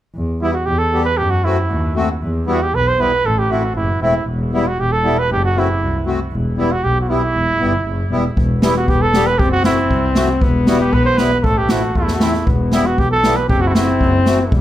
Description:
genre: klezmer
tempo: 117 BPM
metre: 2/4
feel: straight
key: E minor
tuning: A4 = 439 Hz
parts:
  - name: warm double bass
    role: bass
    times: 0.2-14.6 s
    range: E1 to F#2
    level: -19 LUFS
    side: equal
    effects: none
  - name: warm cornet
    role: melody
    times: 0.4-14.2 s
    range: E4 to C5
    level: -19 LUFS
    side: right 3 dB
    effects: tape echo
  - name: accordion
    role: accompaniment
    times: 0.4-14.4 s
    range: G3 to G4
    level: -20 LUFS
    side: left 2 dB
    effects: light tremolo tuning
  - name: bright trombone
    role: second line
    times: 8.4-14.6 s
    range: G3 to C4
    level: -20 LUFS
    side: left 3 dB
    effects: none
  - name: open jazz drum kit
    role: drums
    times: 8.4-14.6 s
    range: kick drum, snare drum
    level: -18 LUFS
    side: equal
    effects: none
room: moderate small room reverb, RT60 0.5 s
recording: none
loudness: -14 LUFS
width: side -13 dB against mid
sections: 0.2-8.4 A section; 8.4-14.6 A section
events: none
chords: 0.2 Em; 1.2 F#dim; 2.2 Em; 3.2 Am; 4.3 Em; 5.3 F#dim; 6.3 Em; 9.4 F#dim; 10.4 Em; 11.4 Am; 12.5 Em; 13.5 F#dim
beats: | 0.15 0.67 | 1.19 1.70 | 2.21 2.73 | 3.24 3.76 | 4.27 4.78 | 5.30 5.81 | 6.32 6.84 | 7.35 7.86 | 8.37 8.88 | 9.39 9.91 | 10.42 10.93 | 11.44 11.95 | 12.47 12.98 | 13.49 14.00 | 14.52

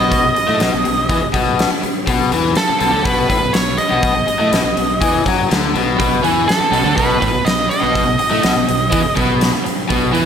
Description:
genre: classic rock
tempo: 123 BPM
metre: 4/4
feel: straight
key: B mixolydian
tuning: A4 = 440 Hz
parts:
  - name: biting lead guitar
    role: melody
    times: 0.0-9.1 s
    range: A4 to D#5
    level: -18 LUFS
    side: right 2 dB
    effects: overdrive, slapback echo
  - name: raw garage guitar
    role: riff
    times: 0.0-10.3 s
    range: A2 to A3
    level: -18 LUFS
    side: left 6 dB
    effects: overdrive
  - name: fingered electric bass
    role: bass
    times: 0.0-10.3 s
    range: A1 to A2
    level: -24 LUFS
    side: right 1 dB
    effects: none
  - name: huge arena drum kit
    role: drums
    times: 0.1-10.3 s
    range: hi-hat, kick drum, snare drum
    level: -19 LUFS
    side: equal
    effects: none
  - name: crunchy overdriven guitar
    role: riff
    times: 6.0-10.3 s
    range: A2 to A3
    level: -21 LUFS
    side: right 11 dB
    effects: none
room: moderate lush hall reverb, RT60 1.7 s, small room ambience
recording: big arena sound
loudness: -13 LUFS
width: side -8 dB against mid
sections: 0.0-10.3 A section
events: none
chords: 0.0 B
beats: | 0.12 0.61 1.09 1.58 | 2.08 2.56 3.05 3.54 | 4.03 4.52 5.01 5.50 | 5.99 6.48 6.97 7.46 | 7.95 8.44 8.93 9.41 | 9.90

